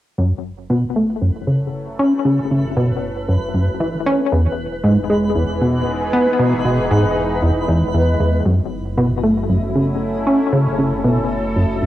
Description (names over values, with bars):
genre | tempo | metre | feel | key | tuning
ambient, sequencer-driven space music | 116 BPM | 4/4 | straight | F# dorian | A4 = 444 Hz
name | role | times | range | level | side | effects
sweeping resonant pad | sustained chords | 0.2-11.9 s | E3 to A4 | -24 LUFS | equal | chorus, cassette tape
plucky analog bass | riff | 0.2-11.9 s | E2 to C#4 | -16 LUFS | equal | cassette tape, ping-pong delay
fat analog bass | bass | 0.2-11.9 s | E1 to F#1 | -30 LUFS | equal | none
twinkling granular texture | texture | 1.5-11.9 s | B4 to D#5 | -26 LUFS | right 3 dB | built-in reverb, cassette tape
room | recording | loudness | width
wet studio ambience, RT60 0.5 s | home recording on cassette | -15 LUFS | side -14 dB against mid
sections
0.2-8.5 A section; 8.5-11.9 B section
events
fade-in on analog synth pad 0.2-8.5; fade-in on analog synth bass 0.2-8.5; fade-in on synth texture 0.2-8.5; filter sweep on analog synth bass 8.5-11.9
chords
0.2 F#m7; 4.3 Emaj7; 8.5 F#m7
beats
| 0.18 0.70 1.22 1.73 | 2.25 2.77 3.29 3.80 | 4.32 4.84 5.35 5.87 | 6.39 6.91 7.42 7.94 | 8.46 8.97 9.49 10.01 | 10.53 11.04 11.56